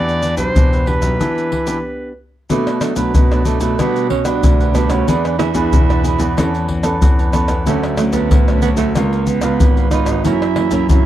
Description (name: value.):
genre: samba and choro.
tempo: 93 BPM.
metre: 4/4.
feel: straight.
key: B minor.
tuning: A4 = 439 Hz.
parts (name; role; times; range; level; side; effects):
bright clarinet; melody; 0.0-2.2 s; B4 to D5; -21 LUFS; right 1 dB; none.
cavaquinho; accompaniment; 0.0-11.0 s; D4 to A5; -25 LUFS; right 5 dB; none.
nylon-string guitar; accompaniment; 0.0-11.1 s; F#2 to A4; -22 LUFS; left 1 dB; none.
clear concert grand piano; bass; 0.0-11.1 s; G#1 to E3; -20 LUFS; left 2 dB; none.
maracas, pandeiro, surdo and tamborim; percussion; 0.1-11.1 s; none; -16 LUFS; left 1 dB; none.
growling tenor saxophone; second line; 2.5-11.1 s; A3 to E4; -19 LUFS; right 12 dB; none.
room: light reverb.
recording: dry, close 1970s-style studio recording.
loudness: -13 LUFS.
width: side -12 dB against mid.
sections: 0.0-2.5 A section; 2.5-11.1 B section.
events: stop 1.9-2.5; tenor saxophone solo 2.5-11.1.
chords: 0.0 Em7; 2.5 Bm7; 3.8 Gmaj7/B; 5.1 E7; 6.4 Aadd9/E; 7.7 Dmaj7; 9.0 C#7; 10.3 F#7.